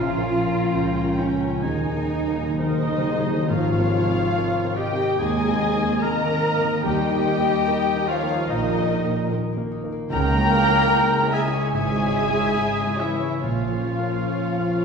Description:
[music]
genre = cinematic, emotional film score for orchestra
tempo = 73 BPM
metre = 4/4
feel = uneven beats, rubato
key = Ab major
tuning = A4 = 438 Hz
[part]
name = muted studio violin section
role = melody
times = 0.0-14.8 s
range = Eb5 to Bb5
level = -29 LUFS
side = left 4 dB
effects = none
[part]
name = mellow hollow large flute ensemble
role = second line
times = 0.0-14.8 s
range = Eb5 to Bb5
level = -30 LUFS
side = left 2 dB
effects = none
[part]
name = muted studio violin section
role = second line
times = 0.0-14.8 s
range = Bb4 to Ab5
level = -31 LUFS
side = left 1 dB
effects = none
[part]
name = warm oboe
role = second line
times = 0.0-14.8 s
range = Eb4 to Ab5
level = -31 LUFS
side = right 2 dB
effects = none
[part]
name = muted studio viola section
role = accompaniment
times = 0.0-14.8 s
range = Db4 to Bb4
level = -29 LUFS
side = right 2 dB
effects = none
[part]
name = warm grand piano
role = accompaniment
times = 0.0-14.8 s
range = Bb1 to Db5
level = -29 LUFS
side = equal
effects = none
[part]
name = mellow French horn section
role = sustained chords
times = 0.0-14.8 s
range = Eb3 to Ab4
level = -27 LUFS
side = left 2 dB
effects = none
[part]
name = concert harp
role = arpeggios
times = 0.0-14.8 s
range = Ab2 to Db6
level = -29 LUFS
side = left 3 dB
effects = none
[part]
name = muted studio cello section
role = bass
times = 0.0-14.1 s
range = Eb2 to F4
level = -30 LUFS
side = right 4 dB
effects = none
[part]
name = muted studio double bass section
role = bass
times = 0.0-14.1 s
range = Ab1 to Eb2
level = -29 LUFS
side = right 3 dB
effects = none
[part]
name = timpani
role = percussion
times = 1.6-8.0 s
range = Eb3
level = -29 LUFS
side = equal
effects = none
[sound]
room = wet scoring stage reverb, RT60 1.5 s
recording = heard from further back in the room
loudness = -19 LUFS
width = side -5 dB against mid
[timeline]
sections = 0.0-3.5 A section; 3.5-14.8 B section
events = timpani fill 1.6-3.5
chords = 0.0 Bbm; 1.6 Ebsus4; 3.5 Abadd9; 6.9 Eb; 10.1 Dbm; 13.4 Bbm

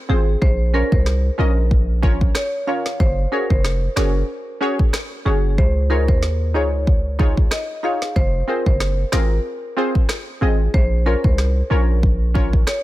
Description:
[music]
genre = dancehall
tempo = 93 BPM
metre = 4/4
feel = swing 56% on 16ths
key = unclear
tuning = A4 = 444 Hz
[part]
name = marimba with medium hard mallets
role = melody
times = 0.1-12.8 s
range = Ab4 to F5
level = -25 LUFS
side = left 1 dB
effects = tape echo
[part]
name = glassy wavetable pluck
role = accompaniment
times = 0.1-12.5 s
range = C4 to Eb5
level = -25 LUFS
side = equal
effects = chorus, sidechain pumping
[part]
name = hard-hitting 808-style bass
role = bass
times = 0.1-12.6 s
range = F1 to Eb2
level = -18 LUFS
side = equal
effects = none
[part]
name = afro-pop drum kit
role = drums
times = 0.4-12.8 s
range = kick drum, rim click, snare drum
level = -18 LUFS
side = equal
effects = none
[sound]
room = little or no reverb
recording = none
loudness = -16 LUFS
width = side -16 dB against mid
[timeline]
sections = 0.0-12.8 A section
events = none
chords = 0.4 Bbm; 3.0 Gbsus2; 5.6 Dbadd9; 8.2 Fm; 10.7 Bbm

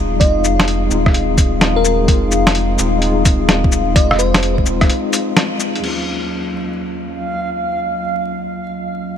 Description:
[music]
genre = future garage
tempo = 128 BPM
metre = 4/4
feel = swing 65% on 16ths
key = F phrygian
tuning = A4 = 436 Hz
[part]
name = mellow tine electric piano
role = accompaniment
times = 0.0-9.2 s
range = Eb2 to F4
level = -21 LUFS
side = left 3 dB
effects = medium stereo tremolo, sidechain pumping, digital delay
[part]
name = warbly tape-like pad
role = sustained chords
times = 0.0-9.2 s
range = Gb3 to F5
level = -23 LUFS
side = left 3 dB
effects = chorus, built-in reverb, sidechain pumping
[part]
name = warm sub bass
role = bass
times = 0.0-4.9 s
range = Eb1 to F1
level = -19 LUFS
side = equal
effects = sidechain pumping
[part]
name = bell-like FM electric piano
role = melody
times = 0.2-4.6 s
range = Bb4 to Eb5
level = -24 LUFS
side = right 1 dB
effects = chorus, digital delay
[part]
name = electronic kick drum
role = drums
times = 0.2-4.9 s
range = none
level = -14 LUFS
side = equal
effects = overdrive
[part]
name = lo-fi sampler-style drum kit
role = drums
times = 0.2-6.0 s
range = cabasa, crash cymbal, hi-hat, rim click, snare drum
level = -18 LUFS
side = equal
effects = none
[part]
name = backwards swelling texture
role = texture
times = 7.1-9.2 s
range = F5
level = -22 LUFS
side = right 4 dB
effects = built-in reverb
[sound]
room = light reverb, digital ambience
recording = vinyl crackle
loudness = -14 LUFS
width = side -9 dB against mid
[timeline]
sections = 0.0-5.8 A section; 5.8-9.2 B section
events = break 4.9-5.8; band accent 5.4; filter sweep on ambient pad 5.8-9.2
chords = 0.0 Fm7; 5.8 Ebm7

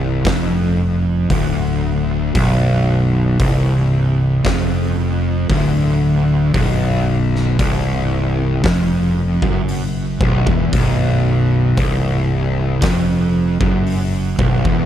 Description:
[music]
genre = stoner and doom metal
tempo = 57 BPM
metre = 4/4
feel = straight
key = unclear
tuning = A4 = 440 Hz
[part]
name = fuzz guitar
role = riff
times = 0.0-14.9 s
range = B1 to F#2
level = -16 LUFS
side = equal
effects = distortion
[part]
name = sustaining fretless electric bass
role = bass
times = 0.0-14.9 s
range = B0 to F#1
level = -21 LUFS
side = equal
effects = overdrive
[part]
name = oversized low-tuned drum kit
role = drums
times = 0.2-14.9 s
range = hi-hat, kick drum, snare drum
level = -22 LUFS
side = equal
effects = none
[sound]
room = little or no reverb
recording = none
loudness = -14 LUFS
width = side -10 dB against mid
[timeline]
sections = 0.0-14.9 A section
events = none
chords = 0.0 Bm

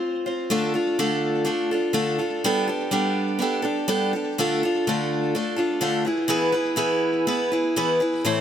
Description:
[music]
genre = rock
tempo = 125 BPM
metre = 4/4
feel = straight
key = unclear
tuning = A4 = 440 Hz
[part]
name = picked steel-string acoustic guitar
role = solo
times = 0.0-8.4 s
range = A2 to C5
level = -21 LUFS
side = equal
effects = tape echo
[sound]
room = moderate plate reverb, RT60 3.6 s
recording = none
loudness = -21 LUFS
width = side -9 dB against mid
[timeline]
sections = 0.5-8.2 A section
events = none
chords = 0.0 F5; 0.5 Dm; 2.5 Gadd9; 4.4 Dm; 6.1 E

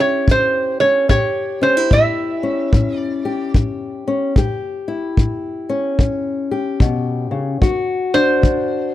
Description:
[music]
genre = acoustic country blues, solo or duo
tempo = 74 BPM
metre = 4/4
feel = swing 63% on 8ths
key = A mixolydian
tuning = A4 = 439 Hz
[part]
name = metal-body resonator slide guitar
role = melody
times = 0.0-8.9 s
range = C5 to E5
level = -17 LUFS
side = right 3 dB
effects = none
[part]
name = fingerpicked old ladder-braced acoustic guitar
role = accompaniment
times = 0.0-8.9 s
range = A2 to G4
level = -19 LUFS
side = left 3 dB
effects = none
[part]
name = kick drum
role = drums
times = 0.3-8.7 s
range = none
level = -16 LUFS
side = equal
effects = none
[sound]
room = studio reverb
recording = dry, close 1970s-style studio recording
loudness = -15 LUFS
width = side -13 dB against mid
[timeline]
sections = 0.0-8.9 A section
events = none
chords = 0.0 A7; 7.6 D7

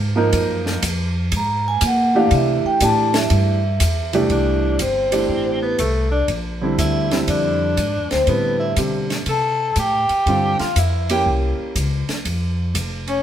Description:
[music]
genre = jazz, small-group swing and bop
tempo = 121 BPM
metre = 4/4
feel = swing 66% on 8ths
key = C major from 4.3 s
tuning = A4 = 440 Hz
[part]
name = upright bass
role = bass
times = 0.0-13.2 s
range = F1 to C3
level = -22 LUFS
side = equal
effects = none
[part]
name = warm concert grand piano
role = accompaniment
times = 0.2-11.7 s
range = C2 to Bb4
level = -21 LUFS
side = right 2 dB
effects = none
[part]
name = compact cocktail drum kit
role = drums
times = 0.3-13.2 s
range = hi-hat, kick drum, ride cymbal, snare drum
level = -26 LUFS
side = right 1 dB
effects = none
[part]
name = vibraphone with medium mallets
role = melody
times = 1.4-13.2 s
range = A4 to Bb5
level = -21 LUFS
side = left 1 dB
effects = none
[part]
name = bright tenor saxophone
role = second line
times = 4.3-13.2 s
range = A3 to A4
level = -25 LUFS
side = right 1 dB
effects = none
[sound]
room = moderate stone room reverb, RT60 1.0 s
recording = band playing live in one room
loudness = -16 LUFS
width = side -10 dB against mid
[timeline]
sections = 0.0-4.3 A section; 4.3-13.2 B section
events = vibraphone solo 0.0-4.3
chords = 0.3 Gbmaj9; 2.3 C69; 4.3 C6; 6.3 Bb69; 8.3 Am9; 10.3 Gm7; 11.3 C7b9; 12.3 N.C.

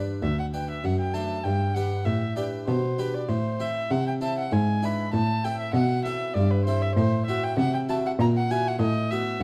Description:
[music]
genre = classical, baroque-style sonata movement with continuo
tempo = 98 BPM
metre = 3/4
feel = straight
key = unclear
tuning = A4 = 443 Hz
[part]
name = harpsichord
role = accompaniment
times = 0.0-9.4 s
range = D2 to C5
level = -32 LUFS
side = equal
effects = none
[part]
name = warm cello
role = bass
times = 0.0-9.4 s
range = D2 to C3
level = -28 LUFS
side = equal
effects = none
[part]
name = warm violin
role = melody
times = 0.2-9.4 s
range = B4 to B5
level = -33 LUFS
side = equal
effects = none
[sound]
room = moderate recital hall reverb, RT60 1.7 s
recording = dark, warm production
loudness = -26 LUFS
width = mono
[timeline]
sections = 0.0-9.4 A section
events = none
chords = 0.0 G; 0.8 D7/F#; 1.5 G; 3.3 Am; 4.5 E7/G#; 5.1 Am; 7.0 F#m7b5/A; 8.2 F#7/A#; 8.8 B5/A

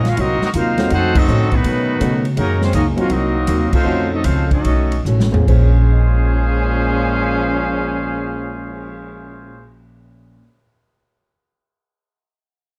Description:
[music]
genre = jazz, big band swing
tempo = 140-164 BPM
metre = 4/4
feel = swing 66% on 8ths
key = Bb minor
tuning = A4 = 440 Hz
[part]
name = warm trumpet section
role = melody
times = 0.0-9.7 s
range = Gb3 to Gb5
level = -26 LUFS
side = equal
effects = none
[part]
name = clear trombone section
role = second line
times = 0.0-9.7 s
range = Bb2 to Gb4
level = -24 LUFS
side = equal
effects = none
[part]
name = picked steel-string acoustic guitar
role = accompaniment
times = 0.0-10.5 s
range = F2 to C5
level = -28 LUFS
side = equal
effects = none
[part]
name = upright bass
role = bass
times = 0.0-10.4 s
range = A1 to C#3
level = -20 LUFS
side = equal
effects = none
[part]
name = swinging big-band drum kit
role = drums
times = 0.0-8.8 s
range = crash cymbal, cymbal swell, hi-hat, kick drum, ride cymbal, snare drum, toms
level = -24 LUFS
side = equal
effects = none
[part]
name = warm baby grand piano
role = accompaniment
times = 0.8-10.7 s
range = Bb2 to Eb7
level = -27 LUFS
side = equal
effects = none
[sound]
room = moderate club reverb, RT60 0.7 s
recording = dark, warm production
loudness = -16 LUFS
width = mono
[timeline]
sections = 0.0-5.5 A section; 5.5-8.9 B section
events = band accent 1.1, 3.7; slowing down 2.4-5.5; drum fill 5.0-5.5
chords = 0.2 Cm7b5; 0.9 F7b9b13; 1.6 B9; 2.4 Gb6; 3.1 Cm7b5; 3.9 F7b9b13; 4.6 B9; 5.5 Bbm9

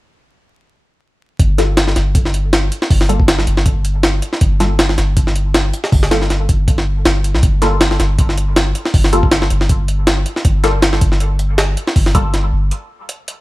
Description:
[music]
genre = drum and bass, jungle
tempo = 159 BPM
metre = 4/4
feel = swing 55% on 16ths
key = G minor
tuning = A4 = 439 Hz
[part]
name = soft dub sub bass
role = bass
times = 1.4-12.7 s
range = G1 to C2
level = -16 LUFS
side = equal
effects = none
[part]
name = jungle sampler-style drum kit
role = drums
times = 1.4-13.4 s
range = hi-hat, kick drum, snare drum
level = -14 LUFS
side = equal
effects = overdrive
[part]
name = filtered dub chord stab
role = stabs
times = 1.6-12.3 s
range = G3 to A4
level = -22 LUFS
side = left 2 dB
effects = phaser, analog chorus, dub echo
[sound]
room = digital ambience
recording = vinyl crackle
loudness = -12 LUFS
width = side -18 dB against mid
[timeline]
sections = 1.4-13.4 A section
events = break 12.7-13.4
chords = none

